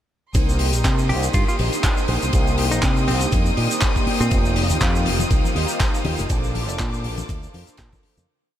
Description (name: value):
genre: nu-disco, nu disco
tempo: 121 BPM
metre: 4/4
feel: swing 56% on 16ths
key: C dorian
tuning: A4 = 441 Hz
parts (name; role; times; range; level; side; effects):
- mellow synth brass; accompaniment; 0.3-8.3 s; D4 to C5; -28 LUFS; equal; chorus, diffuse ambient delay
- clear studio string section; sustained chords; 0.3-8.3 s; Bb3 to Eb6; -27 LUFS; left 1 dB; sidechain pumping
- fingered electric bass with an envelope filter; bass; 0.3-8.2 s; F1 to C3; -22 LUFS; equal; none
- electronic kick drum; drums; 0.3-8.0 s; none; -21 LUFS; equal; none
- tight funk drum kit; drums; 0.3-8.3 s; handclaps, hi-hat, ride cymbal, shaker; -26 LUFS; left 1 dB; none
- semi-hollow electric guitar; melody; 1.1-4.4 s; C4 to G4; -31 LUFS; equal; vintage 12-bit sampler grit, ping-pong delay
- congas and bongos; percussion; 5.2-8.3 s; none; -32 LUFS; left 4 dB; none
room: light reverb, small room reverb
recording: none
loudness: -18 LUFS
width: side -11 dB against mid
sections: 0.4-8.3 drop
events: drop 0.4-8.3; fade-out 5.6-8.3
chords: 0.4 Cm7; 4.3 F9sus4; 6.3 Bbmaj7